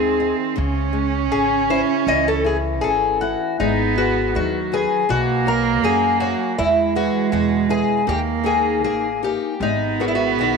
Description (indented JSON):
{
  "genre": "fado-style ballad",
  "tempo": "80 BPM",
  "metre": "2/4",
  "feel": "rubato",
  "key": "C# harmonic minor, G# minor from 3.6 s",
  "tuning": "A4 = 441 Hz",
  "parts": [
    { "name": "fingerpicked twelve-string acoustic guitar", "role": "melody", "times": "0.0-10.6 s", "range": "D#4 to D#5", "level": "-20 LUFS", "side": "left 3 dB", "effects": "none" },
    { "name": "dark cello", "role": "second line", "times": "0.0-10.6 s", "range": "F#3 to C#4", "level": "-22 LUFS", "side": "right 12 dB", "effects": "none" },
    { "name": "nylon-string guitar", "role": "accompaniment", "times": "0.0-10.6 s", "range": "B2 to G5", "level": "-25 LUFS", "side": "left 12 dB", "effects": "none" },
    { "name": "upright bass", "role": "bass", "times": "0.0-10.6 s", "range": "G#1 to F#2", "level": "-27 LUFS", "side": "equal", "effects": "none" }
  ],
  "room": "moderate plate reverb, RT60 3.3 s",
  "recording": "1960s-style stereo with parts hard left and right",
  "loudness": "-17 LUFS",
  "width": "side -5 dB against mid",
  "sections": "0.0-3.6 A section; 3.6-10.6 B section",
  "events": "none",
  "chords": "0.0 G#; 0.6 C#m; 3.6 G#m7; 5.1 Bsus2; 6.6 E; 8.1 D#; 9.6 G#madd9"
}